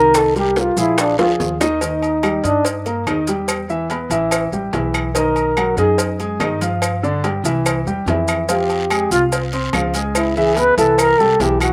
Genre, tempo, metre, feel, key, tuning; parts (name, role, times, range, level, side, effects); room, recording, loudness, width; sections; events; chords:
Afro-Cuban jazz; 144 BPM; 4/4; straight; A4 = 441 Hz
breathy trombone; melody; 0.0-2.7, 5.2-6.0, 8.5-11.7 s; D4 to Cb5; -18 LUFS; equal; slapback echo
warm concert grand piano; accompaniment; 0.0-11.7 s; D3 to F6; -23 LUFS; equal; slapback echo
upright bass; bass; 0.0-11.7 s; A1 to G2; -27 LUFS; equal
bongos and cowbell; percussion; 0.1-11.7 s; -28 LUFS; equal; slapback echo
claves; percussion; 0.1-11.7 s; -30 LUFS; equal
guiro; percussion; 0.1-1.8, 8.5-11.7 s; -34 LUFS; equal
maracas; percussion; 0.1-11.7 s; -31 LUFS; equal
timbales and agogo bells; percussion; 0.1-11.7 s; -29 LUFS; equal; slapback echo
little or no reverb; recorded outdoors, with no room sound; -18 LUFS; mono
0.0-1.8 A section; 1.8-11.7 A section
trombone solo 0.0-11.7; drum fill 1.2-1.8
0.0 Cm7; 1.0 Bb7; 1.8 Eb; 3.5 Asus2; 5.2 B6; 6.8 G5; 7.7 C; 8.5 Fmadd9; 10.2 Dbm7; 11.0 C